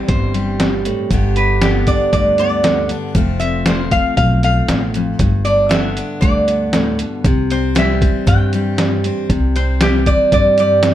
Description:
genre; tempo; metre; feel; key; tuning
honky-tonk and classic country; 117 BPM; 4/4; straight; C major; A4 = 440 Hz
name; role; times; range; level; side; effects
picked steel-string acoustic guitar; accompaniment; 0.0-10.9 s; E2 to G4; -20 LUFS; left 1 dB; none
lap resonator guitar; melody; 0.1-10.9 s; G4 to G5; -17 LUFS; right 1 dB; none
upright bass; bass; 0.1-10.9 s; F1 to G2; -19 LUFS; equal; none
trip hop sampler-style drum kit; drums; 0.1-10.9 s; hi-hat, kick drum, snare drum; -17 LUFS; equal; overdrive
room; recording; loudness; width
light reverb; dark, warm production; -13 LUFS; side -12 dB against mid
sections
0.0-10.9 A section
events
none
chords
0.0 C; 1.1 G; 3.2 F; 5.2 G; 7.2 C

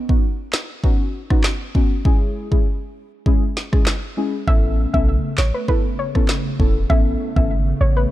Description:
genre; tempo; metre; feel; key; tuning
dancehall; 99 BPM; 4/4; straight; A lydian; A4 = 440 Hz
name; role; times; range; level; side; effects
deep mellow chord stab; accompaniment; 0.0-7.5 s; G#3 to A4; -24 LUFS; left 2 dB; chorus
afro-pop drum kit; drums; 0.1-7.5 s; handclaps, kick drum, rim click, snare drum; -18 LUFS; equal; none
soft round pluck; melody; 4.5-8.1 s; B4 to E5; -25 LUFS; equal; chorus, tape echo
hollow soft pad; sustained chords; 4.5-8.1 s; C#3 to B3; -28 LUFS; equal; ensemble chorus, sidechain pumping
clean 808-style bass; bass; 4.5-8.1 s; E1 to B1; -19 LUFS; equal; none
room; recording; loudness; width
digital ambience; dark, warm production; -17 LUFS; side -15 dB against mid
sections
0.0-4.5 A section; 4.5-8.1 B section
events
none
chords
0.0 Badd9; 2.1 C#m; 4.5 Aadd9

